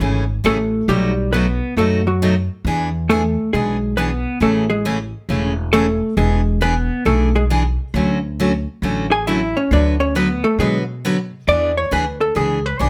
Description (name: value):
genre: country, western swing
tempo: 136 BPM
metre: 4/4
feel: swing 66% on 8ths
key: unclear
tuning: A4 = 440 Hz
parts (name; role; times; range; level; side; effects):
- picked steel-string acoustic guitar; accompaniment; 0.0-12.9 s; B2 to B4; -23 LUFS; equal; none
- upright bass; bass; 0.0-12.9 s; E1 to B2; -23 LUFS; equal; none
- vintage hollow-body jazz guitar; melody; 0.5-12.9 s; F#3 to G#5; -20 LUFS; equal; none
room: light reverb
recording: none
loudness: -18 LUFS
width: mono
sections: 0.0-12.9 A section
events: hollow-body jazz guitar solo 0.0-12.9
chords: 0.0 Amaj7; 0.9 B7; 2.6 E7; 4.4 Amaj7; 6.2 E7; 7.9 Dmaj7; 9.7 Bm/D; 11.5 E7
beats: 0.01 0.45 | 0.89 1.33 1.77 2.21 | 2.65 3.09 3.53 3.97 | 4.41 4.85 5.29 5.74 | 6.18 6.62 7.06 7.50 | 7.94 8.38 8.82 9.27 | 9.71 10.15 10.59 11.03 | 11.47 11.92 12.36 12.80